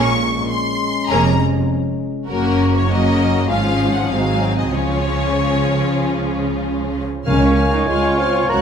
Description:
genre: quick classical-period movement for symphony orchestra.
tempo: 98 BPM.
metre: 4/4.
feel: rubato.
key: Db major.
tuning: A4 = 440 Hz.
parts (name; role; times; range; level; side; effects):
clear studio violin section; melody; 0.0-8.6 s; Bb4 to Gb6; -24 LUFS; left 3 dB; none.
clear studio violin section; second line; 0.0-8.6 s; Eb4 to Bb5; -25 LUFS; left 3 dB; none.
rich studio viola section; accompaniment; 0.0-8.6 s; F3 to Gb4; -23 LUFS; right 1 dB; none.
mellow French horn section; sustained chords; 0.0-8.6 s; F3 to Db4; -22 LUFS; left 6 dB; none.
rich studio double bass section; bass; 0.0-8.6 s; F1 to Db2; -22 LUFS; right 4 dB; none.
warm studio cello section; bass; 0.0-8.6 s; Db2 to Db3; -23 LUFS; right 2 dB; none.
hollow concert flute; second line; 7.3-8.6 s; Db6; -24 LUFS; left 4 dB; none.
warm clarinet; second line; 7.3-8.6 s; Db5; -25 LUFS; left 4 dB; none.
warm oboe; second line; 7.3-8.6 s; Ab5 to Bb5; -24 LUFS; right 2 dB; none.
mellow bassoon; accompaniment; 7.3-8.6 s; Ab3 to C4; -22 LUFS; right 2 dB; none.
timpani; percussion; 7.3-8.2 s; Db3; -24 LUFS; equal; none.
room: moderate scoring stage reverb, RT60 1.6 s.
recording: minimal, uncompressed stereo recording.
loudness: -15 LUFS.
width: side -7 dB against mid.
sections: 0.0-7.3 A section; 7.3-8.6 B section.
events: none.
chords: 0.0 Bbm7; 2.3 Ebm7/Gb; 3.5 Db/Ab; 4.1 Ab7; 4.7 Db.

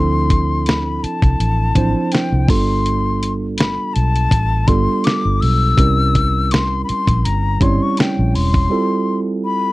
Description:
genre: R&B, neo-soul.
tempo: 82 BPM.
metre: 4/4.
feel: swing 54% on 16ths.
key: unclear.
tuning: A4 = 440 Hz.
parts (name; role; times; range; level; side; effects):
breathy reedy silver concert flute; melody; 0.0-9.7 s; G5 to E6; -21 LUFS; left 4 dB; none.
tine electric piano; accompaniment; 0.0-9.7 s; F3 to Db5; -20 LUFS; right 3 dB; none.
vintage muted fingered electric bass; bass; 0.0-8.7 s; E1 to D2; -18 LUFS; equal; none.
dusty soul sampler-style drum kit; drums; 0.3-8.7 s; hi-hat, kick drum, snare drum; -17 LUFS; equal; none.
room: little or no reverb.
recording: dry, close 1970s-style studio recording.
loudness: -14 LUFS.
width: side -18 dB against mid.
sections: 0.0-9.7 A section.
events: break 8.7-9.7.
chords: 0.0 Dm9; 2.5 G9; 5.8 C7b9; 8.7 Fmaj9.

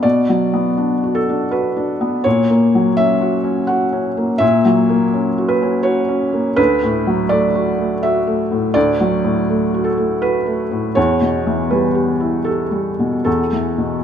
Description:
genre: neoclassical minimalist piano.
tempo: 82 BPM.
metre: 3/4.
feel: rubato.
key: unclear.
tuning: A4 = 440 Hz.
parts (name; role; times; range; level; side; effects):
felt-muted upright piano; solo; 0.0-14.0 s; D2 to F#5; -14 LUFS; equal; none.
room: moderate concert hall reverb, RT60 2.0 s.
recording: minimal, uncompressed stereo recording.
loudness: -14 LUFS.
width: side -8 dB against mid.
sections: 0.0-14.0 A section.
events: none.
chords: 0.0 Bm; 2.3 F#/A#; 6.6 D; 11.0 Em.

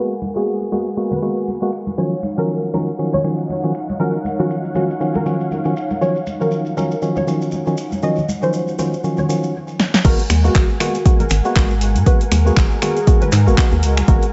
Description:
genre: deep house.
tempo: 119 BPM.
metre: 4/4.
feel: swing 58% on 16ths.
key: G# minor.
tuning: A4 = 437 Hz.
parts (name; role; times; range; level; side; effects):
soft round pluck; melody; 0.0-14.3 s; F#4 to D#5; -27 LUFS; equal; ensemble chorus, tape echo.
warm analog pad; sustained chords; 0.0-14.3 s; G#3 to G#5; -30 LUFS; equal; chorus, sidechain pumping.
percussive organ stab; stabs; 0.0-14.3 s; D#3 to F#4; -23 LUFS; equal; chorus, vintage 12-bit sampler grit, sidechain pumping, tape echo.
maracas; percussion; 0.1-14.3 s; none; -41 LUFS; equal; tape echo.
congas; percussion; 0.2-14.1 s; none; -30 LUFS; equal; tape echo.
deep house drum kit; drums; 9.8-14.3 s; crash cymbal, finger snaps, handclaps, hi-hat, snare drum; -23 LUFS; equal; overdrive.
organ-like FM bass; bass; 10.0-14.2 s; G#1 to G#2; -18 LUFS; equal; sidechain pumping.
electronic kick drum; drums; 10.0-14.2 s; none; -16 LUFS; equal; overdrive.
room: moderate echo chamber reverb, RT60 1.2 s.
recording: echo-heavy mix, low-pass filter, nothing above 7.9 kHz.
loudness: -18 LUFS.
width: mono.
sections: 0.0-10.0 A section; 10.0-14.3 B section.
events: filter sweep on synth stab 0.0-10.0; filter sweep on analog synth pad 0.0-10.0; filter sweep 0.0-10.0; drum fill 9.8; drop 10.0-14.3.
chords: 0.0 G#m9; 2.0 D#m9; 10.0 G#m9.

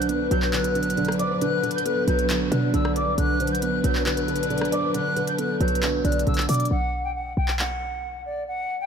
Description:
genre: hip hop, trap.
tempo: 136 BPM.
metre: 4/4.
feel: half-time.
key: B minor.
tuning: A4 = 438 Hz.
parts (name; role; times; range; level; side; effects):
silver concert flute; melody; 0.0-8.9 s; D5 to G6; -28 LUFS; left 1 dB; tape echo.
hollow clarinet-like synth lead; second line; 0.0-6.3 s; A4 to D5; -30 LUFS; left 3 dB; chorus, phaser, tape echo.
dark concert grand piano; accompaniment; 0.0-6.7 s; D3 to D5; -26 LUFS; right 4 dB; analog chorus.
warm symphonic string section; sustained chords; 0.0-6.7 s; F#3 to B4; -29 LUFS; left 2 dB; none.
short 808-style bass; bass; 0.0-8.7 s; B1 to B2; -26 LUFS; equal; none.
trap drum kit; drums; 0.0-7.7 s; handclaps, hi-hat, rim click; -30 LUFS; equal; overdrive.
room: moderate plate reverb, RT60 2.1 s.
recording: dreamy mix soaked in reverb.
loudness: -21 LUFS.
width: side -7 dB against mid.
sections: 0.0-6.7 A section; 6.7-8.9 B section.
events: break 6.7-8.9.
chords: 0.0 Bm; 6.7 B5.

